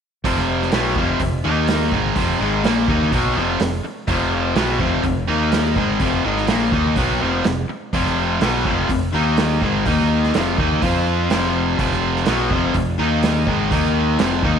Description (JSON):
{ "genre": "classic rock", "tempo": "125 BPM", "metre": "4/4", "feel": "straight", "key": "unclear", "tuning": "A4 = 437 Hz", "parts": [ { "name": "distorted electric guitar", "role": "riff", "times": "0.2-14.6 s", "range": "F2 to F4", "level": "-22 LUFS", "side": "right 10 dB", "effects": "overdrive" }, { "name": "raw garage guitar", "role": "riff", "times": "0.2-14.6 s", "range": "F2 to F4", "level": "-21 LUFS", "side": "left 8 dB", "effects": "overdrive" }, { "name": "growling fingered electric bass", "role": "bass", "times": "0.2-14.6 s", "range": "F1 to F2", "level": "-24 LUFS", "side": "equal", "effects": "overdrive" }, { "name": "vintage drum kit", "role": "drums", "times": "0.2-14.5 s", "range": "hi-hat, kick drum, snare drum", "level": "-23 LUFS", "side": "right 3 dB", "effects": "none" } ], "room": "moderate echo chamber reverb, RT60 2.0 s, small room ambience", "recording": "1960s-style stereo with parts hard left and right", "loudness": "-16 LUFS", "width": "side -7 dB against mid", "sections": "0.2-14.6 A section", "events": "none", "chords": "0.2 F5; 1.4 Eb5; 1.9 F5; 5.3 Eb5; 5.8 F5; 9.1 Eb5; 9.6 Ab5; 9.9 Eb5; 10.3 F5; 13.0 Eb5; 13.5 Ab5; 13.7 Eb5" }